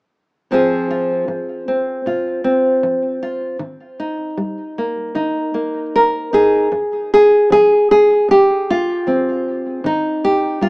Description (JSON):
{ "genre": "folk, solo fingerstyle acoustic guitar", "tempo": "77 BPM", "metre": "4/4", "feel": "straight", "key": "F minor", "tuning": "A4 = 441 Hz", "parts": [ { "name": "nylon-string guitar", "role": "solo", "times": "0.5-10.7 s", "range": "F2 to Bb4", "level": "-14 LUFS", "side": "equal", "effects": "none" } ], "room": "wet small room reverb, RT60 0.6 s", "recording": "rough home demo mix, small speaker sound", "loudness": "-14 LUFS", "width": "side -26 dB against mid", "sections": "0.5-6.7 A section; 6.7-10.7 B section", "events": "none", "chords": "0.5 Fm; 3.6 Eb; 6.7 F5; 9.8 Eb" }